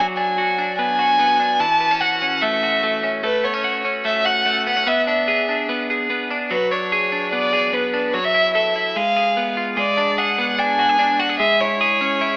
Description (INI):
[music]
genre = indie pop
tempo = 147 BPM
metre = 4/4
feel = straight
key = unclear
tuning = A4 = 438 Hz
[part]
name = warm violin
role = melody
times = 0.0-12.4 s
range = B4 to A5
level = -21 LUFS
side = equal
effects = none
[part]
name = twelve-string electric guitar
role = arpeggios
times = 0.0-12.4 s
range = E3 to A4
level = -23 LUFS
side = equal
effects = none
[sound]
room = light reverb, small room ambience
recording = rough home demo mix, AM radio sound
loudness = -19 LUFS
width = mono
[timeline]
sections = 0.0-9.8 A section; 9.8-12.4 B section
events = none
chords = 0.0 G#m7b5; 1.6 A6; 3.2 F#m; 4.9 E7; 6.5 G#m7b5; 8.1 A5; 9.0 G#m6; 9.8 G#dim; 11.4 C#m